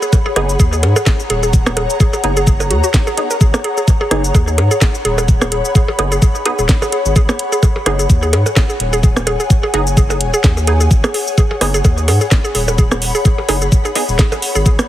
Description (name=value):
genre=minimal techno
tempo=128 BPM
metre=4/4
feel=swing 56% on 16ths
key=G# minor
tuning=A4 = 440 Hz
part: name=mallet-like synth pluck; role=riff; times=0.0-14.7 s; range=F#4 to A#4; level=-21 LUFS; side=right 1 dB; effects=chorus, cassette tape, sidechain pumping, digital delay
part: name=garage drum kit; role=drums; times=0.0-14.9 s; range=cabasa, hi-hat, snare drum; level=-20 LUFS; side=equal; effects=none
part: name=ethereal airy pad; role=texture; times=0.0-14.9 s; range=G#4 to B5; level=-21 LUFS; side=left 2 dB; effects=ensemble chorus, built-in reverb, sidechain pumping
part: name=electronic kick drum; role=drums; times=0.1-14.8 s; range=none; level=-12 LUFS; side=equal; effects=none
part: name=electronic percussion blips and rim click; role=percussion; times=0.1-14.9 s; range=none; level=-21 LUFS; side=right 2 dB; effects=digital delay
part: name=filtered dub chord stab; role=stabs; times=0.4-14.0 s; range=B3 to G#4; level=-24 LUFS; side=right 3 dB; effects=ensemble chorus, digital delay
part: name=saturated sub bass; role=bass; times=0.4-14.8 s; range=D#1 to G#2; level=-17 LUFS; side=equal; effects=sidechain pumping
room=light reverb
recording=heavily compressed radio sound, multiband compression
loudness=-11 LUFS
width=side -13 dB against mid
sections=0.0-14.9 A section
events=none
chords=0.0 G#m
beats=0.13 0.60 1.06 | 1.53 2.00 2.47 2.94 | 3.41 3.88 4.35 4.81 | 5.28 5.75 6.22 6.69 | 7.16 7.63 8.10 8.56 | 9.03 9.50 9.97 10.44 | 10.91 11.38 11.85 12.31 | 12.78 13.25 13.72 14.19 | 14.66